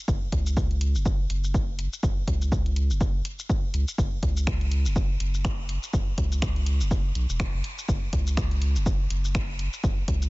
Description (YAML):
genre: minimal techno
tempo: 123 BPM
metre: 4/4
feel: swing 58% on 16ths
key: unclear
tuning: A4 = 440 Hz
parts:
  - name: saturated sub bass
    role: bass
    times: 0.1-10.3 s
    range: E1 to C#2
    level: -26 LUFS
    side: equal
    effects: sidechain pumping
  - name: electronic kick drum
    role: drums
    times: 0.1-10.2 s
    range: none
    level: -26 LUFS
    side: equal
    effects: none
  - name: punchy analog drum machine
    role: drums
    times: 0.1-10.3 s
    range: finger snaps, hi-hat, shaker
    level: -36 LUFS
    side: left 1 dB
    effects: none
room: little or no reverb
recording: nothing above 7.8 kHz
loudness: -23 LUFS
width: side -23 dB against mid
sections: 0.0-10.3 A section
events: none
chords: none